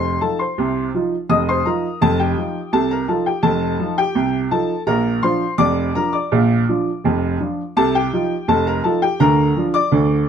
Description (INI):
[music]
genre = ragtime piano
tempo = 83 BPM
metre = 2/4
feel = straight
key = Bb major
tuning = A4 = 440 Hz
[part]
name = clear upright piano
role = solo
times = 0.0-10.2 s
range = F1 to Eb6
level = -16 LUFS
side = equal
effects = none
[sound]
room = light reverb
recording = close, detailed microphones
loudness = -16 LUFS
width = side -8 dB against mid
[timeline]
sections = 0.0-10.3 A section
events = none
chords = 0.0 F7; 4.9 Bb; 7.8 F7/C; 9.2 Bb/D